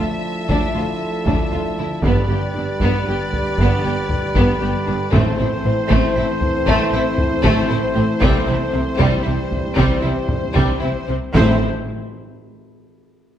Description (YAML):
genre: cinematic, epic orchestral film score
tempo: 78 BPM (dotted quarters)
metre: 12/8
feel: straight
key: A minor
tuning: A4 = 439 Hz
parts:
  - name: rich symphonic violin section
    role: melody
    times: 0.0-11.6 s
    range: C5 to E5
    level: -28 LUFS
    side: left 5 dB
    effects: none
  - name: rich symphonic violin section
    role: second line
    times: 0.0-11.6 s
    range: G3 to G4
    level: -25 LUFS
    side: left 2 dB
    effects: none
  - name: warm symphonic viola section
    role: accompaniment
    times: 0.0-11.6 s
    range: A3 to C4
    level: -27 LUFS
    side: right 1 dB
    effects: none
  - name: mellow French horn section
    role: sustained chords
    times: 0.0-11.6 s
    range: C4 to G4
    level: -28 LUFS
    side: left 3 dB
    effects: none
  - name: warm trombone section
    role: sustained chords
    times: 0.0-11.6 s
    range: D3 to A3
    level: -27 LUFS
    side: right 4 dB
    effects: none
  - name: warm trumpet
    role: stabs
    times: 0.0-11.6 s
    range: A4 to C5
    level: -27 LUFS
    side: equal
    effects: none
  - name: rich symphonic cello section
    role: bass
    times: 0.0-11.6 s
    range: D2 to C3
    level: -23 LUFS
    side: right 1 dB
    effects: none
  - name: rich symphonic double bass section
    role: bass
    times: 0.0-11.6 s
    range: G1 to D2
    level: -23 LUFS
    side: right 2 dB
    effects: none
  - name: taiko ensemble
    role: drums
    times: 0.5-12.3 s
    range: none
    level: -22 LUFS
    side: equal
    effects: none
  - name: timpani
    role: percussion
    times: 5.1-5.9, 11.3-11.6 s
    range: A2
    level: -31 LUFS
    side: equal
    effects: none
room: moderate scoring stage reverb, RT60 1.5 s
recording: none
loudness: -16 LUFS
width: side -10 dB against mid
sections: 0.0-11.4 A section; 11.4-13.4 B section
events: none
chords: 0.0 Dmadd9; 2.0 G; 5.1 Am; 8.2 C; 11.4 Am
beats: 0.50 1.27 | 2.04 2.81 3.59 4.35 | 5.12 5.90 6.67 7.44 | 8.22 9.00 9.77 10.56 | 11.35 12.13